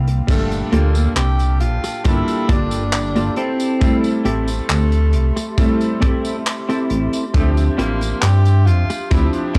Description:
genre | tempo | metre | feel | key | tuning
vaporwave | 68 BPM | 4/4 | straight | G dorian | A4 = 440 Hz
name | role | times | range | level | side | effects
warm electric grand piano | accompaniment | 0.0-9.6 s | Bb2 to E5 | -25 LUFS | equal | lush chorus, tape echo
warbly tape-like pad | sustained chords | 0.0-9.6 s | Bb3 to E6 | -34 LUFS | equal | chorus, built-in reverb
semi-hollow electric guitar | riff | 0.0-9.6 s | Bb3 to F5 | -24 LUFS | equal | analog chorus, tape echo
chorused synth bass | bass | 0.0-9.6 s | G1 to G2 | -19 LUFS | equal | tube saturation
modern studio drum kit | drums | 0.1-9.6 s | crash cymbal, handclaps, hi-hat, tambourine | -29 LUFS | equal | none
warm tenor saxophone | melody | 0.3-9.6 s | A3 to G4 | -28 LUFS | equal | tape echo
kick drum | drums | 0.3-9.6 s | none | -20 LUFS | equal | none
room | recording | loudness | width
studio reverb | dry, gritty hardware recording | -17 LUFS | mono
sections
0.3-9.6 A section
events
clean electric guitar fill 0.0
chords
0.3 Gm9; 3.4 Am7; 7.3 Dm11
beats
| 0.29 1.17 2.05 2.93 | 3.81 4.70 5.58 6.46 | 7.34 8.23 9.11

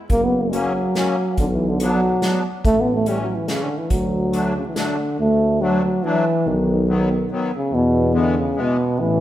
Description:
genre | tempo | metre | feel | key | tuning
alpine folk, alpine dance band | 142 BPM | 3/4 | swing 55% on 8ths | D major | A4 = 440 Hz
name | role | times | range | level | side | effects
mellow euphonium | melody | 0.1-9.2 s | B2 to B3 | -20 LUFS | equal | none
mellow tuba | bass | 0.1-9.2 s | F#1 to E2 | -22 LUFS | equal | none
unplugged drum kit | drums | 0.1-4.9 s | hi-hat, kick drum, snare drum | -24 LUFS | equal | none
musette accordion | accompaniment | 0.5-8.8 s | D#3 to D4 | -25 LUFS | left 2 dB | none
room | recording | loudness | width
moderate recital hall reverb, RT60 1.4 s | recorded in a church or concert hall | -17 LUFS | side -13 dB against mid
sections
0.0-5.2 A section; 5.2-9.2 B section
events
none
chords
0.1 F#; 1.4 Bm; 2.6 A; 3.9 D; 6.5 B; 7.7 E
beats
| 0.09 0.52 0.94 | 1.37 1.79 2.21 | 2.63 3.06 3.48 | 3.90 4.32 4.75 | 5.18 5.61 6.03 | 6.46 6.88 7.30 | 7.72 8.14 8.57 | 8.99

